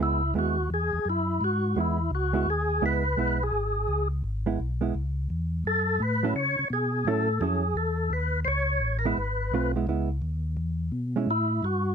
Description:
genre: jazz.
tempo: 170 BPM.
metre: 4/4.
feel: swing 64% on 8ths.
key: C# minor.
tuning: A4 = 440 Hz.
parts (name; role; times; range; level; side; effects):
percussive tonewheel organ; melody; 0.0-11.9 s; E4 to C#5; -27 LUFS; left 1 dB; slow rotary speaker, overdrive, chorus vibrato.
hollow-body jazz guitar; accompaniment; 0.0-11.3 s; F#3 to A4; -28 LUFS; right 7 dB; none.
mellow tonewheel organ; bass; 0.0-11.9 s; G#1 to C#3; -28 LUFS; left 1 dB; chorus vibrato, slow rotary speaker.
room: little or no reverb.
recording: close, detailed microphones.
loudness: -24 LUFS.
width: side -7 dB against mid.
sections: 0.0-11.9 A section.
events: none.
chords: 0.0 C#m7; 5.6 F#m7; 8.5 C#m7; 11.3 A5.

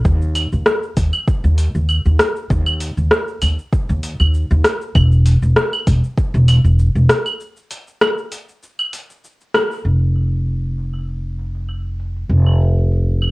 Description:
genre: sunset chillout.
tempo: 98 BPM.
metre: 4/4.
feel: swing 54% on 16ths.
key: unclear.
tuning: A4 = 440 Hz.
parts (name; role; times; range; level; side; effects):
upright bass; bass; 0.0-13.3 s; E1 to Eb2; -14 LUFS; equal; none.
deep house drum kit; drums; 0.0-13.3 s; claves, hi-hat, rim click, shaker; -17 LUFS; equal; overdrive, low-pass filter on hats, cassette tape, low-pass filter on perc, low-pass filter on snare, low-pass filter on room.
electronic kick drum; drums; 0.1-6.3 s; none; -17 LUFS; equal; overdrive, cassette tape.
room: light reverb.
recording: home recording on cassette.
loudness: -14 LUFS.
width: side -22 dB against mid.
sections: 0.0-9.8 A section; 9.8-13.3 B section.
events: break 7.4-9.8; band accent 9.5-9.8; filter sweep on drum 9.8-13.3.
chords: none.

